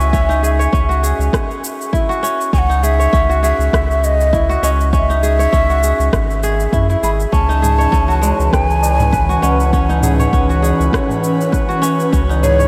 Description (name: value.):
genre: organic downtempo.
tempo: 100 BPM.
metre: 4/4.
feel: swing 55% on 16ths.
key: C# minor.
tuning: A4 = 440 Hz.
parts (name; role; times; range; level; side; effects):
breathy ney; melody; 0.0-12.7 s; C#5 to B5; -21 LUFS; equal; delay.
kora; arpeggios; 0.0-12.7 s; G#3 to C#5; -22 LUFS; equal; delay.
warm sub bass; bass; 0.0-12.7 s; G#1 to F#2; -18 LUFS; equal; none.
electronic shaker and rim click; drums; 0.0-12.7 s; none; -30 LUFS; equal; overdrive.
electronic kick drum; drums; 0.1-12.3 s; none; -20 LUFS; equal; overdrive.
airy breathy pad; sustained chords; 7.3-12.7 s; E3 to C#5; -21 LUFS; equal; chorus, sidechain pumping.
tabla; percussion; 7.5-12.7 s; none; -27 LUFS; equal; none.
room: moderate huge ambient reverb, RT60 8.8 s.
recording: dreamy mix soaked in reverb.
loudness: -15 LUFS.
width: mono.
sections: 0.0-12.7 A section.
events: none.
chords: 0.0 C#madd9; 7.3 A/C#.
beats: | 0.13 0.73 1.33 1.93 | 2.53 3.13 3.73 4.33 | 4.93 5.53 6.13 6.73 | 7.33 7.93 8.53 9.13 | 9.73 10.33 10.93 11.53 | 12.13.